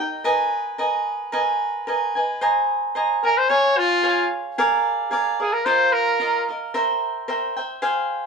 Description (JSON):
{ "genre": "mexican folk, mariachi", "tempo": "111 BPM", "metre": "2/4", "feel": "straight", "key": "Ab major", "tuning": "A4 = 440 Hz", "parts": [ { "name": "cavaquinho", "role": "accompaniment", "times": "0.0-8.3 s", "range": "F4 to Bb5", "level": "-21 LUFS", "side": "right 2 dB", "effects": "none" }, { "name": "clear trumpet", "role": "melody", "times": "3.2-6.5 s", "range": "F4 to Db5", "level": "-18 LUFS", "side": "left 1 dB", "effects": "none" } ], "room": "moderate small room reverb, RT60 0.6 s", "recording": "dark, warm production", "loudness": "-19 LUFS", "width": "side -5 dB against mid", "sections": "0.0-2.4 A section; 2.4-8.3 B section", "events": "none", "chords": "0.3 G#madd9; 2.4 Abadd9; 3.5 Db; 4.6 Bb7; 5.7 Ebsus2; 6.7 C7" }